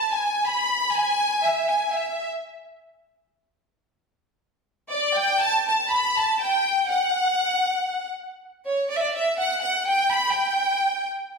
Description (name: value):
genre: mexican folk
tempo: free time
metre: none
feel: none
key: unclear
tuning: A4 = 441 Hz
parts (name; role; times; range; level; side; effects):
- clear symphonic violin section; solo; 0.0-2.3, 4.9-11.1 s; C#5 to B5; -21 LUFS; equal; none
room: wet recital hall reverb, RT60 1.3 s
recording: heard from further back in the room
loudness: -21 LUFS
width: side -4 dB against mid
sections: 0.0-8.3 A section; 8.3-11.4 B section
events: none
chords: none